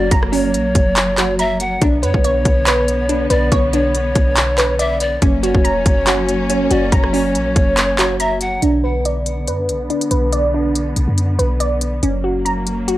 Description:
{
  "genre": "hip hop, trap",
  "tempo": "141 BPM",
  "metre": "4/4",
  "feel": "half-time",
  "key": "B harmonic minor",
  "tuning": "A4 = 440 Hz",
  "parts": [
    { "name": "breathy pan flute", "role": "second line", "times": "0.0-8.6 s", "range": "C#5 to F#5", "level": "-21 LUFS", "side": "equal", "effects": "tape echo" },
    { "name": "warm symphonic string section", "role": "sustained chords", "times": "0.0-13.0 s", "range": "D3 to C#4", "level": "-23 LUFS", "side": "equal", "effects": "low-pass filter" },
    { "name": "glassy wavetable pluck", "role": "arpeggios", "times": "0.0-13.0 s", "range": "C#4 to A#5", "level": "-20 LUFS", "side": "right 1 dB", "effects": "chorus, low-pass filter, tape echo" },
    { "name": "clean 808-style bass", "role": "bass", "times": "0.0-13.0 s", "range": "E1 to F#2", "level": "-21 LUFS", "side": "equal", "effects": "none" },
    { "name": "trap drum kit", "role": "drums", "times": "0.1-13.0 s", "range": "handclaps, hi-hat, kick drum, rim click", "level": "-17 LUFS", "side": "equal", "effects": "none" }
  ],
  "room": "little or no reverb",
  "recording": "dry, gritty hardware recording, cassette tape",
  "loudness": "-14 LUFS",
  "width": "side -15 dB against mid",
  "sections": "0.0-8.6 A section; 8.6-13.0 B section",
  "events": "filter sweep 8.6-13.0",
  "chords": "0.0 F#; 1.8 Bmadd9; 5.2 F#; 8.6 Bm; 12.0 F#",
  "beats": "| 0.11 0.54 0.96 1.39 | 1.82 2.24 2.67 3.09 | 3.52 3.94 4.37 4.79 | 5.22 5.65 6.07 6.50 | 6.92 7.35 7.77 8.20 | 8.62 9.05 9.48 9.90 | 10.33 10.75 11.18 11.60 | 12.03 12.45 12.88"
}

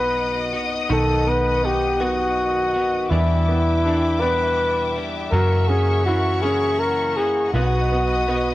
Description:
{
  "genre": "six-eight pop ballad",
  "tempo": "54 BPM (dotted quarters)",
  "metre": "6/8",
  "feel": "straight",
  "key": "unclear",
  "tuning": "A4 = 440 Hz",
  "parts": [
    { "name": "breathy flugelhorn", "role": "melody", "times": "0.0-8.5 s", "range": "E4 to B4", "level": "-21 LUFS", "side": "left 1 dB", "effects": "tape echo" },
    { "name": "felt-muted upright piano", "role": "accompaniment", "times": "0.0-8.5 s", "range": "D#3 to E4", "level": "-27 LUFS", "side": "right 3 dB", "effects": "none" },
    { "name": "warm studio string section", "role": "sustained chords", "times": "0.0-8.5 s", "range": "A#4 to D#6", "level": "-28 LUFS", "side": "left 3 dB", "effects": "none" },
    { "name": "direct-recorded clean electric guitar", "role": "arpeggios", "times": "0.0-8.5 s", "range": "E2 to F#4", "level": "-30 LUFS", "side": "left 3 dB", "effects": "lush chorus, tape echo" },
    { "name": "vintage muted fingered electric bass", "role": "bass", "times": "0.0-8.5 s", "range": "B1 to F#2", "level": "-23 LUFS", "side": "equal", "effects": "none" }
  ],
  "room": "small room ambience",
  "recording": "worn, warbling old tape, cassette tape, warbly pitch drift",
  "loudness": "-18 LUFS",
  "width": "side -16 dB against mid",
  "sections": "0.0-8.5 A section",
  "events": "none",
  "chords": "0.0 B; 3.1 Em7; 5.3 F#7; 7.5 B",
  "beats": "| 0.90 2.01 | 3.11 4.22 | 5.33 6.43 | 7.54"
}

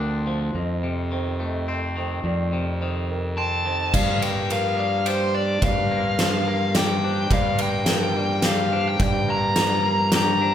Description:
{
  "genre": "post-rock",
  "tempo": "107 BPM",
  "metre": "3/4",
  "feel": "straight",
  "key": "G minor",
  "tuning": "A4 = 440 Hz",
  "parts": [
    { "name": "felt-muted upright piano", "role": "arpeggios", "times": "0.0-10.5 s", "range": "Bb4 to Eb5", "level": "-33 LUFS", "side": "right 4 dB", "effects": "none" },
    { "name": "twangy electric guitar", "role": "arpeggios", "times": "0.0-10.5 s", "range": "F2 to G4", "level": "-30 LUFS", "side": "left 2 dB", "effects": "none" },
    { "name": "fuzz fingered electric bass", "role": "bass", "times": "0.0-10.5 s", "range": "D2 to G2", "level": "-25 LUFS", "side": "equal", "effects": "overdrive" },
    { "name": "bluesy overdriven lead guitar", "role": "melody", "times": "3.4-10.5 s", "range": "C5 to Bb5", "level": "-24 LUFS", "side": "left 2 dB", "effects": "distortion" },
    { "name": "huge arena drum kit", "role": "drums", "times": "3.9-10.3 s", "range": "crash cymbal, kick drum, ride cymbal, snare drum", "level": "-24 LUFS", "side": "right 1 dB", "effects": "none" }
  ],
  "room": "moderate recital hall reverb, RT60 1.7 s",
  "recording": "recorded in a church or concert hall",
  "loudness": "-20 LUFS",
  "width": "side -10 dB against mid",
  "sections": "0.0-3.9 A section; 3.9-10.5 B section",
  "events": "none",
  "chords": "0.0 Dm7; 0.6 F7; 3.9 Gm7",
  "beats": "| 0.56 1.12 1.69 | 2.25 2.81 3.38 | 3.94 4.50 5.07 | 5.63 6.19 6.75 | 7.32 7.88 8.44 | 9.00 9.56 10.12"
}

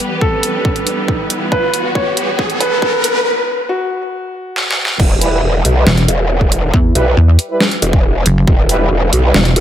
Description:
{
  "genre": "heavy wobble dubstep",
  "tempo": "138 BPM",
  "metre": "4/4",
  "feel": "half-time",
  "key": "E dorian",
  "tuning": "A4 = 440 Hz",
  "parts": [
    { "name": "clear studio string section", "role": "sustained chords", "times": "0.0-3.2 s", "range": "E3 to B4", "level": "-22 LUFS", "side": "right 1 dB", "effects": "sidechain pumping" },
    { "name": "dubstep drum kit", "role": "drums", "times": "0.0-9.6 s", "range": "crash cymbal, hi-hat, snare drum", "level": "-16 LUFS", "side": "equal", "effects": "overdrive, high-pass filter on hats, high-pass filter on snare, high-pass filter on toms, high-pass filter on cymbals, high-pass filter on room" },
    { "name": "riser", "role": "sound effects", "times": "0.0-3.3 s", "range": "none", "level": "-19 LUFS", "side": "equal", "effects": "none" },
    { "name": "dark concert grand piano", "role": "melody", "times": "0.2-4.9 s", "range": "F#4 to C#5", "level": "-19 LUFS", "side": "equal", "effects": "digital delay" },
    { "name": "electronic kick drum", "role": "drums", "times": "0.2-8.6 s", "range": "none", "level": "-14 LUFS", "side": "equal", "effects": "none" },
    { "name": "growl bass", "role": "bass", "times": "5.0-9.6 s", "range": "E1 to B1", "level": "-13 LUFS", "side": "equal", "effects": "chorus, overdrive" },
    { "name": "warm brass ensemble", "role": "stabs", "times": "5.2-9.3 s", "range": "G3 to B4", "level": "-20 LUFS", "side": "right 2 dB", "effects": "digital delay" },
    { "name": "pulsing pluck wobble bass", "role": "bass", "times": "5.9-9.5 s", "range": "E1 to E2", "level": "-10 LUFS", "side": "equal", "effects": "chorus, overdrive" }
  ],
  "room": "light reverb",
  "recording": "high-pass filter",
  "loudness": "-11 LUFS",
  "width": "side -10 dB against mid",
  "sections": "0.0-5.0 A section; 5.0-9.6 B section",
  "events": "build-up 0.0-5.0; riser 0.0-3.3; filter sweep 0.0-5.0; drum fill 1.5-3.3, 4.6-5.0; break 3.3-5.0; drop 5.0-9.6",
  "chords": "0.0 Em",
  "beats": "0.21 0.65 1.08 | 1.52 1.95 2.39 2.82 | 3.26 3.69 4.13 4.56 | 5.00 5.43 5.87 6.30 | 6.74 7.17 7.61 8.04 | 8.47 8.91 9.35"
}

